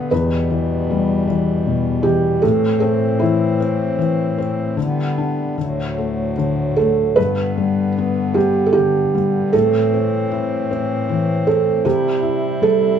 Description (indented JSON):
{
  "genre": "children's music, lullaby",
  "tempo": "77 BPM",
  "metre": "3/4",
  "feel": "rubato",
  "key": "G major",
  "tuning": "A4 = 440 Hz",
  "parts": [
    { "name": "felt-muted upright piano", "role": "melody", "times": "0.0-13.0 s", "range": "E4 to B4", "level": "-18 LUFS", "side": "right 5 dB", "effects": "none" },
    { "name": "felt-muted upright piano", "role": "accompaniment", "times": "0.0-13.0 s", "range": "E2 to E4", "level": "-19 LUFS", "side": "left 4 dB", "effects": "none" },
    { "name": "pedal harmonium", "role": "sustained chords", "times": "0.0-13.0 s", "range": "D2 to E4", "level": "-24 LUFS", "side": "equal", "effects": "none" }
  ],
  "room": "moderate large studio reverb, RT60 0.9 s",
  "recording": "band playing live in one room",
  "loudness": "-16 LUFS",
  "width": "side -8 dB against mid",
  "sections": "0.0-7.2 A section; 7.2-13.0 A section",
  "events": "none",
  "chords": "0.1 Em; 2.4 Am; 4.8 G/D; 5.6 D; 7.2 G; 9.5 Am; 11.9 C"
}